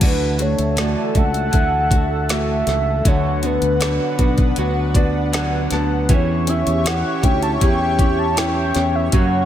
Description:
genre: pop ballad.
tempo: 79 BPM.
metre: 4/4.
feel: straight.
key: unclear.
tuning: A4 = 440 Hz.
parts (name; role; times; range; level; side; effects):
mellow horn-like synth lead; melody; 0.0-9.5 s; B4 to A5; -23 LUFS; equal; chorus, tape echo.
warm concert grand piano; accompaniment; 0.0-9.5 s; D3 to A5; -24 LUFS; left 5 dB; none.
airy breathy pad; sustained chords; 0.0-9.5 s; D4 to C#6; -25 LUFS; equal; chorus.
nylon-string guitar; arpeggios; 0.0-9.5 s; F#2 to G4; -26 LUFS; right 6 dB; tape echo.
fretless electric bass; bass; 0.0-9.5 s; B1 to F#2; -21 LUFS; equal; none.
smooth R&B drum kit; drums; 0.0-9.3 s; crash cymbal, hi-hat, kick drum, snare drum; -19 LUFS; equal; none.
room: light reverb.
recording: none.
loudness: -16 LUFS.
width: side -11 dB against mid.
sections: 0.0-9.5 A section.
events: grand piano fill 4.6-6.1.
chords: 0.0 Dadd9; 3.1 Bm; 6.1 C#dim.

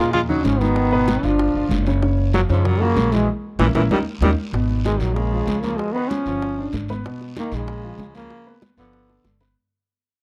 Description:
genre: Afro-Cuban jazz.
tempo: 191 BPM.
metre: 4/4.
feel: straight.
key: unclear.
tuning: A4 = 441 Hz.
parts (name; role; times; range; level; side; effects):
warm trombone; melody; 0.0-9.4 s; E3 to E#4; -25 LUFS; equal; none.
clear tenor saxophone; second line; 0.0-9.4 s; G#2 to G#3; -32 LUFS; equal; none.
warm baby grand piano; accompaniment; 0.0-9.5 s; A#2 to C#5; -28 LUFS; equal; none.
upright bass; bass; 0.0-9.5 s; F#1 to F#2; -24 LUFS; equal; none.
bongos; percussion; 0.1-9.5 s; none; -33 LUFS; equal; none.
congas; percussion; 0.1-9.4 s; none; -31 LUFS; equal; none.
guiro; percussion; 0.1-9.6 s; none; -43 LUFS; equal; none.
room: small room ambience.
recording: dry, close 1970s-style studio recording.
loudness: -20 LUFS.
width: mono.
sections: 0.0-4.5 A section; 4.5-9.6 B section.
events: band accent 3.3-4.5; drum fill 3.9-4.5, 9.1-9.6; fade-out 4.5-9.6.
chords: 0.0 D#m11; 0.8 G#m7; 1.4 G5; 2.0 F#maj7; 3.3 A#dim; 3.9 D#7(no3); 4.5 G#madd9; 5.2 A#m7; 5.8 C#7; 6.4 G7; 7.0 Bmaj13; 7.7 A#m7; 8.3 C#6; 8.9 G7.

